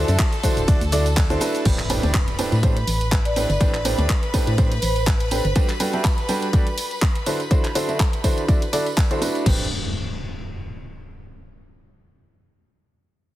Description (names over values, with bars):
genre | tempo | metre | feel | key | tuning
piano house | 123 BPM | 4/4 | swing 55% on 16ths | A dorian | A4 = 440 Hz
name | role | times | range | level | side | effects
bright studio violin section | sustained chords | 0.0-9.5 s | A4 to B5 | -31 LUFS | left 1 dB | sidechain pumping
clear upright piano | riff | 0.0-9.6 s | A2 to E5 | -24 LUFS | right 1 dB | sidechain pumping, low-pass filter, tape echo
organ-like FM bass | bass | 0.0-5.5, 9.5-9.7 s | D1 to A2 | -22 LUFS | equal | sidechain pumping
house drum kit | drums | 0.1-9.6 s | crash cymbal, handclaps, hi-hat, ride cymbal, shaker | -28 LUFS | equal | none
tambourine | percussion | 0.1-9.4 s | none | -35 LUFS | right 6 dB | none
electronic kick drum | drums | 0.2-9.6 s | none | -19 LUFS | equal | none
impact | sound effects | 1.7-3.6, 9.5-11.4 s | none | -30 LUFS | equal | none
vibraphone with soft mallets | melody | 3.3-5.5 s | C5 to D5 | -28 LUFS | right 1 dB | none
room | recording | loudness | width
light reverb, small room ambience | heavily compressed radio sound, multiband compression | -18 LUFS | side -14 dB against mid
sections
0.0-1.7 A section; 1.7-9.5 B section; 9.5-11.4 C section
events
drop 0.0-1.7; impact 1.7-3.6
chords
0.0 D9; 1.7 Am11; 5.6 Gmaj9; 7.3 D9; 9.5 Am11